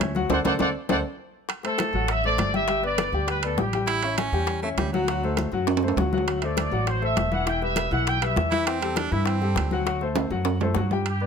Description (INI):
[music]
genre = latin, salsa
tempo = 201 BPM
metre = 4/4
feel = straight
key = unclear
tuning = A4 = 439 Hz
[part]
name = clear concert grand piano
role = accompaniment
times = 0.0-11.3 s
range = E3 to G5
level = -28 LUFS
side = left 6 dB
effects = none
[part]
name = upright bass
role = bass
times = 0.0-11.3 s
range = E1 to G2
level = -28 LUFS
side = right 1 dB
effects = none
[part]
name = bongos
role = percussion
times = 0.0-10.9 s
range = none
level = -33 LUFS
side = left 10 dB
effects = none
[part]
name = congas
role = percussion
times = 0.0-11.3 s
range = none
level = -32 LUFS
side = left 4 dB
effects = none
[part]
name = timbales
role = percussion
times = 0.0-11.2 s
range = none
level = -29 LUFS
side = right 9 dB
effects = none
[part]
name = warm trumpet section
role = melody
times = 0.3-3.8, 6.4-8.5, 11.1-11.3 s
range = G4 to G5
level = -26 LUFS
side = right 1 dB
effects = none
[part]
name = bright baritone saxophone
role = second line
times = 3.9-5.5, 8.5-9.9 s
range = F#3 to E4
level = -29 LUFS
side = right 6 dB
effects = none
[sound]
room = light reverb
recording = close, detailed microphones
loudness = -22 LUFS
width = side -6 dB against mid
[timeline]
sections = 0.0-1.5 A section; 1.5-11.1 B section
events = band accent 0.3-1.5; drum fill 0.6-1.5, 5.7-6.3, 10.2-11.1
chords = 0.3 D7; 2.7 G; 3.9 A7; 5.1 D7; 7.5 Em; 8.7 C6/E; 9.9 D7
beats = 0.00 | 0.30 0.60 0.90 1.20 | 1.49 1.79 2.09 2.39 | 2.69 2.99 3.29 3.58 | 3.88 4.18 4.48 4.78 | 5.08 5.38 5.68 5.98 | 6.27 6.57 6.87 7.17 | 7.47 7.77 8.07 8.37 | 8.67 8.96 9.27 9.56 | 9.86 10.16 10.46 10.76 | 11.06